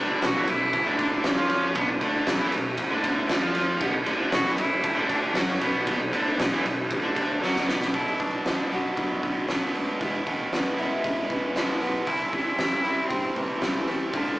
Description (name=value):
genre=quiet-loud alternative rock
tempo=116 BPM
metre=4/4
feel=straight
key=B minor, B dorian from 7.9 s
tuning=A4 = 440 Hz
part: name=ensemble organ-string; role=sustained chords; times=0.0-7.9 s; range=B4 to D6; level=-40 LUFS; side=equal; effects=none
part: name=cranked stack guitar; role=riff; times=0.0-14.4 s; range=B2 to F#4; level=-29 LUFS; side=right 1 dB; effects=overdrive, spring reverb
part: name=thick fuzz guitar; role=riff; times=0.0-7.9 s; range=B2 to F#4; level=-34 LUFS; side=left 2 dB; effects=distortion
part: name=fuzz fingered electric bass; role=bass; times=0.0-14.3 s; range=E1 to G2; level=-36 LUFS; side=equal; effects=overdrive
part: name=clear cello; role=melody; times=0.2-14.4 s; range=F#3 to F#4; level=-30 LUFS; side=equal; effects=none
part: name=oversized low-tuned drum kit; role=drums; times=0.2-14.3 s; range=hi-hat, kick drum, ride cymbal, snare drum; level=-26 LUFS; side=equal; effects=none
part: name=fingerpicked steel-string acoustic guitar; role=arpeggios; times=7.9-14.4 s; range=E2 to F#4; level=-32 LUFS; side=left 1 dB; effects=none
room=moderate stone room reverb, RT60 1.2 s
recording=rough rehearsal-room recording, small speaker sound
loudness=-23 LUFS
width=side -19 dB against mid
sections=0.0-7.9 A section; 7.9-14.4 B section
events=drum fill 7.4-7.9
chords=0.0 Bm; 10.0 E; 12.1 C